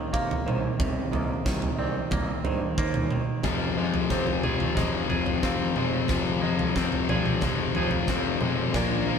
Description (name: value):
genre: post-rock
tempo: 91 BPM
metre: 4/4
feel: straight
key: F dorian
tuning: A4 = 440 Hz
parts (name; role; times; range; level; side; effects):
- pedal steel guitar; sustained chords; 0.0-9.2 s; Bb3 to Ab5; -41 LUFS; right 4 dB; none
- felt-muted upright piano; arpeggios; 0.0-9.2 s; C5 to F5; -36 LUFS; right 7 dB; none
- twangy electric guitar; arpeggios; 0.0-9.2 s; F2 to Ab4; -33 LUFS; equal; none
- fuzz picked electric bass; bass; 0.1-9.2 s; F1 to C3; -33 LUFS; equal; overdrive
- huge arena drum kit; drums; 0.1-8.9 s; kick drum, snare drum, toms; -28 LUFS; right 2 dB; none
- biting overdriven guitar; riff; 3.4-9.2 s; F2 to Bb3; -26 LUFS; left 8 dB; none
room: moderate stone room reverb, RT60 1.1 s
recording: band playing live in one room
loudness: -24 LUFS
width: side -6 dB against mid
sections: 0.0-3.4 A section; 3.4-9.2 B section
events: build-up 3.4-9.2; drum fill 3.4-9.2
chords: 0.0 Cm7; 3.4 Fm7